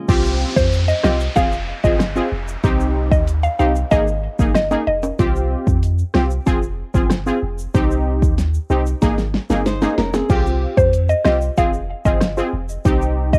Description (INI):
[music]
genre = dancehall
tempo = 94 BPM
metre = 4/4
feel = straight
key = unclear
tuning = A4 = 438 Hz
[part]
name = nylon-string guitar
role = arpeggios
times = 0.0-0.1, 9.5-10.4 s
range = C4 to C5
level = -26 LUFS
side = equal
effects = cassette tape, plate reverb
[part]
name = synth brass stab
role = accompaniment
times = 0.1-13.4 s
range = Bb3 to Ab4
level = -24 LUFS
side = equal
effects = chorus, cassette tape, plate reverb
[part]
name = punchy sub bass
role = bass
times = 0.1-13.4 s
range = F1 to F2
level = -23 LUFS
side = equal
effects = none
[part]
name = deep house drum kit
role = drums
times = 0.1-13.4 s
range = crash cymbal, hi-hat, kick drum, rim click, snare drum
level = -21 LUFS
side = equal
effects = cassette tape
[part]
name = egg shaker and timbales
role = percussion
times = 0.1-13.4 s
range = none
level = -34 LUFS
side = equal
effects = none
[part]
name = downlifter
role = sound effects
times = 0.1-5.2 s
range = none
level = -34 LUFS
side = equal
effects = none
[part]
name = mallet-like synth pluck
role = melody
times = 0.6-5.0, 10.8-13.4 s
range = C5 to F5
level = -22 LUFS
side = equal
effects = chorus, cassette tape, tape echo, plate reverb
[sound]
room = light reverb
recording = home recording on cassette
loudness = -18 LUFS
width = mono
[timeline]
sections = 0.1-13.4 A section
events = drum fill 9.0-10.3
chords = 0.1 Csus4; 1.4 Fm; 2.6 Cm; 3.9 Absus2; 5.2 Csus4; 6.5 Fm; 7.7 Cm; 9.0 Absus2; 10.3 Csus4; 11.6 Fm; 12.9 Cm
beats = | 0.09 0.72 1.36 2.00 | 2.64 3.28 3.92 4.55 | 5.19 5.83 6.47 7.11 | 7.75 8.38 9.02 9.66 | 10.30 10.94 11.57 12.21 | 12.85